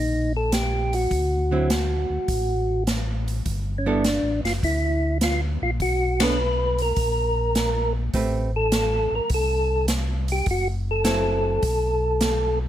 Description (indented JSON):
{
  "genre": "soul jazz organ trio",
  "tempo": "103 BPM",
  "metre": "4/4",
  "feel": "swing 69% on 8ths",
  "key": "G major from 3.5 s",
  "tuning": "A4 = 439 Hz",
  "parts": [
    { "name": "percussive tonewheel organ", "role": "melody", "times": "0.0-12.6 s", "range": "C#4 to B4", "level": "-23 LUFS", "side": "equal", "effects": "slow rotary speaker" },
    { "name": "mellow tonewheel organ", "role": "bass", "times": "0.0-12.7 s", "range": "F#1 to D2", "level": "-25 LUFS", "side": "equal", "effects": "overdrive, chorus vibrato, slow rotary speaker" },
    { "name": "swinging big-band drum kit", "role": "drums", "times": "0.5-12.4 s", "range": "hi-hat, kick drum, ride cymbal, snare drum", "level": "-28 LUFS", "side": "equal", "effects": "none" },
    { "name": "archtop guitar, miked and amplified", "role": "accompaniment", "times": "1.5-11.6 s", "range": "D3 to C#5", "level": "-25 LUFS", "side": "right 4 dB", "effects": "none" }
  ],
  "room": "little or no reverb",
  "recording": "close, detailed microphones",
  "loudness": "-20 LUFS",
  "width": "side -11 dB against mid",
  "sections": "0.0-3.5 A section; 3.5-12.7 B section",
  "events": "band accent 6.1",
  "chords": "0.0 Eb; 1.1 D; 3.5 Gsus2; 5.8 Bm9; 7.0 N.C.; 8.1 Am9; 10.5 F#m7b5; 11.6 Asus2/B"
}